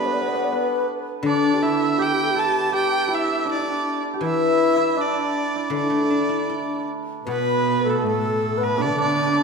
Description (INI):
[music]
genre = chinese traditional, Chinese chamber ensemble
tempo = 80 BPM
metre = 4/4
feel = rubato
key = D zhi mode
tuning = A4 = 435 Hz
[part]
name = bright erhu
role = melody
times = 0.0-9.4 s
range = A4 to A5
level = -25 LUFS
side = right 2 dB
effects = none
[part]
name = breathy bright low xiao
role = second line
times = 0.0-9.4 s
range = D4 to D5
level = -26 LUFS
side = left 4 dB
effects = none
[part]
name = hammered dulcimer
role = second line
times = 0.0-9.4 s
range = A3 to A4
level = -26 LUFS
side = right 4 dB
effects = none
[part]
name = guzheng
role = accompaniment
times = 0.0-9.4 s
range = B2 to A4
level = -24 LUFS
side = left 3 dB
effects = none
[part]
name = dark cello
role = second line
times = 7.3-9.4 s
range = A2 to D3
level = -24 LUFS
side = right 6 dB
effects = none
[sound]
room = wet scoring stage reverb, RT60 1.8 s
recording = minimal, uncompressed stereo recording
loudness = -19 LUFS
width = side -4 dB against mid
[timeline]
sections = 0.0-7.3 A section; 7.3-9.4 B section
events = none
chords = none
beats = 0.51 | 1.26 2.00 2.74 3.48 | 4.22 4.96 5.72 6.50 | 7.27 8.04 8.79